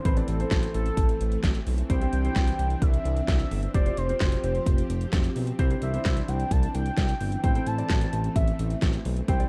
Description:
synth-pop; 130 BPM; 4/4; straight; A4 = 440 Hz
warm velvety synth lead; melody; 0.0-9.5 s; A4 to A5; -35 LUFS; equal; chorus, slapback echo
string machine, violas; sustained chords; 0.0-9.5 s; E3 to G4; -38 LUFS; equal; ensemble chorus
downlifter; sound effects; 0.0-1.9 s; barely audible
warm baby grand piano; accompaniment; 0.1-9.5 s; C4 to D5; -37 LUFS; equal
smooth synth bass; bass; 0.1-9.4 s; F1 to C2; -30 LUFS; equal
pop drum kit; drums; 0.1-9.5 s; handclaps, hi-hat, kick drum, snare drum; -28 LUFS; equal
little or no reverb; dark, warm production; -25 LUFS; mono
0.0-9.5 A section
0.1 Am; 1.9 Cadd9; 3.7 Fsus2; 5.6 Cadd9; 7.4 Am
| 0.05 0.51 0.97 1.44 | 1.90 2.36 2.82 3.28 | 3.74 4.21 4.67 5.13 | 5.59 6.05 6.51 6.97 | 7.44 7.90 8.36 8.82 | 9.28

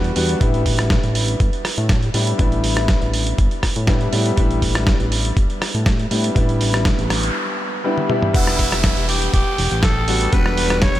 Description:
nu-disco, nu disco; 121 BPM; 4/4; straight; A4 = 439 Hz
warm grand piano; accompaniment; 0.0-11.0 s; G3 to F#5; -23 LUFS; left 1 dB; analog chorus, sidechain pumping, diffuse ambient delay
fat analog bass; bass; 0.0-11.0 s; D1 to A2; -21 LUFS; equal
dusty soul sampler-style drum kit; drums; 0.0-11.0 s; crash cymbal, hi-hat, rim click, snare drum, toms; -23 LUFS; right 1 dB
electronic kick drum; drums; 0.4-10.9 s; -19 LUFS; equal
noise sweep and downlifter; sound effects; 6.9-11.0 s; -26 LUFS; right 1 dB
growling tenor saxophone; melody; 8.3-11.0 s; E4 to C#5; -22 LUFS; equal; analog delay
light reverb; -16 LUFS; side -14 dB against mid
0.0-8.3 A section; 8.3-11.0 B section
noise sweep 6.9-8.3; break 7.4-8.3; drum fill 8.0-8.3; drop 8.3-11.0
0.4 A9sus4; 8.3 Em7
| 0.41 0.91 1.40 1.90 | 2.40 2.89 3.39 3.88 | 4.38 4.87 5.37 5.87 | 6.36 6.86 7.35 7.85 | 8.35 8.84 9.34 9.83 | 10.33 10.82

